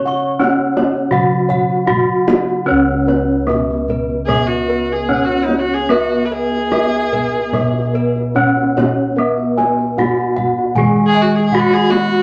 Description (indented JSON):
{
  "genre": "Javanese gamelan",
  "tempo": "74-88 BPM",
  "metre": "4/4",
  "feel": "straight",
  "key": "C# slendro",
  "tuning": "A4 = 436 Hz",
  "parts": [
    { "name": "gamelan-type bronze metallophone", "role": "melody", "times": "0.0-12.2 s", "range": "B3-25c to C#5", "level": "-20 LUFS", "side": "equal", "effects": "none" },
    { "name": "gamelan-type bronze metallophone", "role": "accompaniment", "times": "0.0-12.2 s", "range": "C#3 to C#4", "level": "-24 LUFS", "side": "equal", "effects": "none" },
    { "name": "gamelan-type bossed gongs", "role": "arpeggios", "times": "0.0-11.9 s", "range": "B4-25c to G#5", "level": "-27 LUFS", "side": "equal", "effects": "none" },
    { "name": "gamelan-type bronze metallophone", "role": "arpeggios", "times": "0.0-12.2 s", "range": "B4-25c to C#6", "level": "-25 LUFS", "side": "equal", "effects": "none" },
    { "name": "gamelan-type bossed gongs", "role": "bass", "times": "0.0-12.2 s", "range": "C#2 to C#5", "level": "-25 LUFS", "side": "equal", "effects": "none" },
    { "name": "kendang", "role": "percussion", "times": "0.1-12.1 s", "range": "none", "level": "-24 LUFS", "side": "equal", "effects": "none" },
    { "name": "clear viola", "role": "second line", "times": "4.3-12.2 s", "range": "E4-42c to B4", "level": "-21 LUFS", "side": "equal", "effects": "none" }
  ],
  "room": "moderate studio ambience, RT60 0.4 s",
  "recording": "none",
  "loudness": "-16 LUFS",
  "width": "mono",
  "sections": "0.0-2.7 A section; 2.7-12.2 B section",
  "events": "none",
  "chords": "none"
}